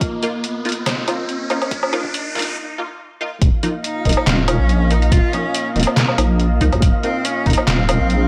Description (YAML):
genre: deep dubstep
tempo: 141 BPM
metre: 4/4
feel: swing 54% on 16ths, half-time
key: unclear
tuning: A4 = 440 Hz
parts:
  - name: dark analog pad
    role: sustained chords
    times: 0.0-8.3 s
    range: Bb3 to Eb5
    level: -30 LUFS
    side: equal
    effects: chorus
  - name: electronic kick drum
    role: drums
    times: 0.0-7.6 s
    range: none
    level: -19 LUFS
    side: equal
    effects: studio reverb
  - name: trip hop sampler-style drum kit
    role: drums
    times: 0.0-8.2 s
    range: handclaps, hi-hat, snare drum, woodblock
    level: -23 LUFS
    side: equal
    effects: studio reverb
  - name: riser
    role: sound effects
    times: 0.0-2.6 s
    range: none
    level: -29 LUFS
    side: equal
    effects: none
  - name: filtered dub chord stab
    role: stabs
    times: 0.2-8.0 s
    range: F3 to F4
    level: -28 LUFS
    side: equal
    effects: phaser, ensemble chorus, dub echo
  - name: deep soft wobble bass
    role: bass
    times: 3.4-8.3 s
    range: Eb1 to Eb2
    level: -19 LUFS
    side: equal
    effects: chorus
  - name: flickering grainy texture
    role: texture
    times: 3.6-8.3 s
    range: F5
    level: -31 LUFS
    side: equal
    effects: built-in reverb
  - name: rich cello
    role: melody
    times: 3.8-8.3 s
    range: Bb3 to F4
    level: -26 LUFS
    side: equal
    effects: dub echo
room: light reverb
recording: high-pass filter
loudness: -18 LUFS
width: mono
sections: 0.0-3.4 A section; 3.4-8.3 B section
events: build-up 0.0-3.4; riser 0.0-2.6; filter sweep 0.0-3.4; break 2.6-3.4; drop 3.4-8.3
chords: 0.0 Ebsus2